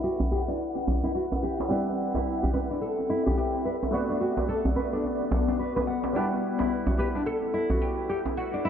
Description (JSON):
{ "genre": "organic downtempo", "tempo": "108 BPM", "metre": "4/4", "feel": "swing 60% on 16ths", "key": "E minor", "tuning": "A4 = 441 Hz", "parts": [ { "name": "oud", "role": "melody", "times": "0.0-8.7 s", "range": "F#4 to B4", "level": "-34 LUFS", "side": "equal", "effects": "tape echo" }, { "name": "felt-muted upright piano", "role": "accompaniment", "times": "0.0-8.7 s", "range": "G3 to F#5", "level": "-33 LUFS", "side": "right 2 dB", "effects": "low-pass filter, analog delay" }, { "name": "ethereal airy pad", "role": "sustained chords", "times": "0.0-8.7 s", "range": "B3 to F#5", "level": "-31 LUFS", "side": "left 2 dB", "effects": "ensemble chorus, built-in reverb" }, { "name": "nylon-string guitar", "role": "arpeggios", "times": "0.0-8.7 s", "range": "D4 to F#5", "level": "-32 LUFS", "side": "left 1 dB", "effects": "low-pass filter, tape echo" }, { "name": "djembe", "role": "percussion", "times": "0.2-8.3 s", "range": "none", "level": "-30 LUFS", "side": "right 1 dB", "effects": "analog delay" } ], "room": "wet spring reverb, RT60 1.3 s", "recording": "echo-heavy mix, low-pass filter", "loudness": "-25 LUFS", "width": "side -8 dB against mid", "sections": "0.0-8.7 A section", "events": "filter sweep on nylon-string guitar 0.0-8.7; filter sweep on felt piano 0.0-8.7; filter sweep on ambient pad 0.0-8.7; filter sweep 0.0-8.7", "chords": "0.0 Em9; 1.7 Cmaj9; 3.9 Bm7; 6.2 Em9", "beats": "0.04 0.60 1.15 | 1.71 2.26 2.82 3.37 | 3.93 4.49 5.04 5.60 | 6.15 6.71 7.26 7.82 | 8.37" }